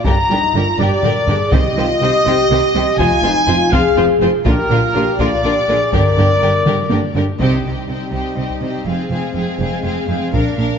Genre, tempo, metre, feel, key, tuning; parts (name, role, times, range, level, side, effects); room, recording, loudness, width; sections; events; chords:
cinematic, epic orchestral film score; 82 BPM (dotted quarters); 6/8; straight; C minor; A4 = 437 Hz
warm symphonic violin section; melody; 0.0-10.8 s; Bb4 to Bb5; -25 LUFS; left 4 dB
mellow French horn section; sustained chords; 0.0-10.8 s; G3 to Bb4; -20 LUFS; left 3 dB
bright trumpet section; stabs; 0.0-7.1 s; Bb4 to Bb5; -18 LUFS; equal
rich symphonic violin section; second line; 0.1-10.8 s; F4 to C5; -25 LUFS; left 3 dB
rich symphonic viola section; accompaniment; 0.1-10.8 s; D3 to D4; -24 LUFS; right 1 dB
rich symphonic cello section; bass; 0.1-10.7 s; F2 to C3; -22 LUFS; right 2 dB
rich symphonic double bass section; bass; 0.1-10.7 s; F1 to C2; -22 LUFS; right 3 dB
taiko ensemble; drums; 0.1-10.8 s; -21 LUFS; equal
timpani; percussion; 1.5-2.2, 5.9-6.6 s; G2 to C3; -24 LUFS; equal
moderate scoring stage reverb, RT60 1.6 s; nothing above 7.7 kHz; -13 LUFS; side -7 dB against mid
0.0-7.4 A section; 7.4-10.8 B section
drum fill 0.8-1.5, 6.7-7.4; band accent 7.4-7.9
0.1 Gm; 1.5 Cm; 3.0 Fm; 4.5 Bb; 5.9 Gm; 7.4 Cm; 8.9 Fm